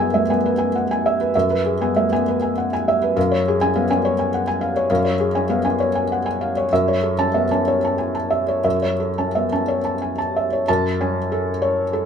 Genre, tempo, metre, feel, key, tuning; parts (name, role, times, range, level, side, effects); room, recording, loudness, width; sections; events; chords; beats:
neoclassical minimalist piano; 58-70 BPM (dotted quarters); 6/8; rubato; F# minor; A4 = 439 Hz
felt-muted upright piano; solo; 0.0-12.1 s; F#2 to A5; -17 LUFS; equal
moderate studio reverb, RT60 0.9 s; band playing live in one room; -17 LUFS; side -7 dB against mid
0.0-10.7 A section; 10.7-12.1 B section
0.0 E/F#; 3.2 C#/F#; 6.7 A/F#; 10.7 F#madd9
0.42 | 1.34 2.25 | 3.15 4.03 | 4.90 5.79 | 6.70 7.66 | 8.65 9.67 | 10.67 11.62